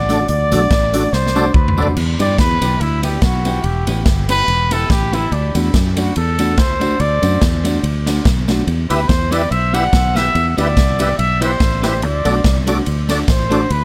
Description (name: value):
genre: ska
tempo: 143 BPM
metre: 4/4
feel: swing 55% on 8ths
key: E minor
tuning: A4 = 440 Hz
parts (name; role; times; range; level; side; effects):
- warm trumpet; melody; 0.0-13.8 s; D4 to F#5; -22 LUFS; equal; dub echo
- fingered electric bass; bass; 0.0-13.8 s; E1 to G2; -21 LUFS; equal; none
- electric guitar at the edge of break-up; accompaniment; 0.1-13.6 s; A3 to G4; -24 LUFS; equal; none
- tonewheel organ; stabs; 0.1-1.9, 8.9-13.6 s; D4 to E5; -24 LUFS; equal; chorus vibrato, slow rotary speaker
- swinging big-band drum kit; drums; 0.1-13.8 s; crash cymbal, hi-hat, kick drum, ride cymbal, snare drum, toms; -21 LUFS; equal; none
- tambourine; percussion; 0.1-13.6 s; none; -38 LUFS; equal; dub echo
room: little or no reverb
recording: faint mains hum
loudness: -16 LUFS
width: mono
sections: 0.0-2.0 A section; 2.0-13.8 A section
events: trumpet solo 0.0-2.0, 2.0-13.8; drum fill 1.1-2.0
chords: 0.0 D; 2.0 Em; 5.3 D; 8.7 Em; 12.0 D